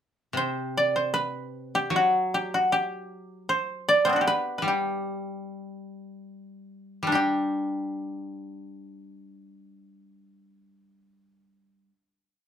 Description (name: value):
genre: japanese traditional, Japanese chamber music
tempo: 49-79 BPM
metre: 2/4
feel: rubato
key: G ryukyu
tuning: A4 = 441 Hz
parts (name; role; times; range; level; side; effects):
- koto; accompaniment; 0.3-12.0 s; C3 to G4; -30 LUFS; left 1 dB; none
- koto; melody; 0.4-12.0 s; G3 to D5; -23 LUFS; equal; none
room: moderate studio reverb, RT60 0.6 s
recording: none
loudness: -24 LUFS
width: side -8 dB against mid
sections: 0.4-7.1 A section; 7.1-11.9 final chord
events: slowing down 3.5-7.1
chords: none